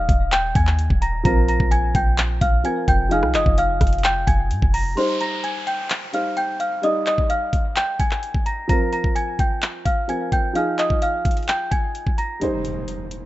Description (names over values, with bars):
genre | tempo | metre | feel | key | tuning
hip hop, trap | 129 BPM | 4/4 | half-time | C minor | A4 = 440 Hz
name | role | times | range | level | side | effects
worn celesta | melody | 0.0-12.4 s | C5 to Bb6 | -22 LUFS | left 1 dB | tape echo
dark grand piano | accompaniment | 0.0-13.3 s | F3 to D5 | -27 LUFS | right 1 dB | none
clean 808-style bass | bass | 0.0-5.0 s | Eb1 to Ab2 | -21 LUFS | equal | none
trap drum kit | drums | 0.1-13.2 s | handclaps, hi-hat, kick drum, rim click | -21 LUFS | equal | vintage 12-bit sampler grit
downlifter and impact | sound effects | 5.0-8.7, 12.4-13.3 s | none | -33 LUFS | equal | none
room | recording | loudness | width
little or no reverb | rough home demo mix, nothing above 7.9 kHz | -18 LUFS | side -16 dB against mid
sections
0.0-5.0 A section; 5.0-12.4 B section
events
break 12.4-13.3; impact 12.4-13.3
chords
0.0 Ebmaj7; 1.3 Bbsus2; 3.1 Fm7; 5.0 Cm; 6.8 Ebmaj7; 8.7 Bbsus2; 10.6 Fm7; 12.4 Cm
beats
0.32 0.79 | 1.25 1.72 2.18 2.65 | 3.11 3.58 4.04 4.51 | 4.97 5.44 5.90 6.37 | 6.83 7.30 7.76 8.23 | 8.69 9.16 9.62 10.09 | 10.55 11.02 11.48 11.95 | 12.41 12.88